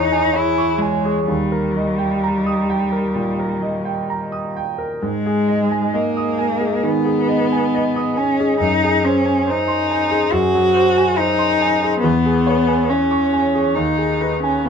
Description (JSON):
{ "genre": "classical, romantic duo for cello and grand piano", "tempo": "63-71 BPM", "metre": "4/4", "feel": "rubato", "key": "G# minor", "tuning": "A4 = 440 Hz", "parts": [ { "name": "rich cello", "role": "melody", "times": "0.0-14.7 s", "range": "G3 to F#4", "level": "-18 LUFS", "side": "left 1 dB", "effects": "none" }, { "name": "bright grand piano", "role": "accompaniment", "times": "0.0-14.7 s", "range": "D#2 to D#6", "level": "-19 LUFS", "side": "right 1 dB", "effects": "none" } ], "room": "moderate studio reverb, RT60 0.6 s", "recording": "dark, warm production", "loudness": "-16 LUFS", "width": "side -6 dB against mid", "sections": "0.0-14.7 A section", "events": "none", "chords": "0.0 C#m/E; 1.3 D#; 5.0 G#m; 8.6 G#7/F#; 12.0 C#m/E; 13.7 G#m/D#" }